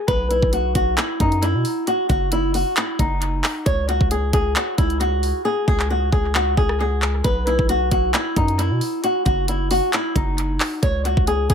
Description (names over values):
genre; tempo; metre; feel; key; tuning
hip hop, trap; 134 BPM; 4/4; half-time; C# minor; A4 = 440 Hz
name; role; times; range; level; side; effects
flamenco guitar; melody; 0.0-11.5 s; D#4 to C#5; -21 LUFS; left 1 dB; analog delay
long sustained 808-style bass; bass; 0.1-11.5 s; F#1 to B2; -22 LUFS; equal; none
trap drum kit; drums; 0.1-11.5 s; handclaps, hi-hat, kick drum, rim click; -22 LUFS; equal; analog delay
room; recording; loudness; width
light reverb, digital ambience; echo-heavy mix; -18 LUFS; side -7 dB against mid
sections
0.0-11.5 A section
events
hi-hats muted 5.5-7.2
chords
0.1 B5; 1.9 D#m/F#; 3.7 C#5; 7.2 B5; 9.0 D#m/F#; 10.8 C#5